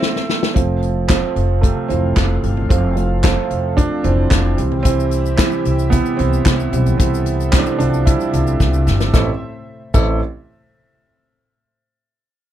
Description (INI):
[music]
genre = piano-driven pop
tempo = 112 BPM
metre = 4/4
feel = straight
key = A minor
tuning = A4 = 444 Hz
[part]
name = warm upright piano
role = accompaniment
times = 0.0-10.2 s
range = A1 to C5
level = -19 LUFS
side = right 4 dB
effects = none
[part]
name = chorused pulse-width pad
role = sustained chords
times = 0.0-9.4 s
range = A2 to F5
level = -28 LUFS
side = left 4 dB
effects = none
[part]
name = unplugged drum kit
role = drums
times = 0.0-10.1 s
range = crash cymbal, handclaps, hi-hat, kick drum, snare drum, toms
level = -17 LUFS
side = left 1 dB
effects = none
[part]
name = upright bass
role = bass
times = 0.6-10.2 s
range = F1 to C2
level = -18 LUFS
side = equal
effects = none
[part]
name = tube shaker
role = percussion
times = 4.9-10.2 s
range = none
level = -37 LUFS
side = left 24 dB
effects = none
[sound]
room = little or no reverb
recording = none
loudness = -14 LUFS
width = side -11 dB against mid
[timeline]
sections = 0.6-9.1 A section; 9.1-11.3 B section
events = drum fill 0.0-0.6, 8.6-9.1; band accent 0.0-0.6; upright piano solo 0.6-9.1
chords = 0.0 Am; 0.6 F; 4.6 C; 9.1 Am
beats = 0.02 | 0.56 1.09 1.63 2.17 | 2.70 3.24 3.78 4.31 | 4.85 5.39 5.92 6.46 | 7.00 7.53 8.07 8.60 | 9.14 9.67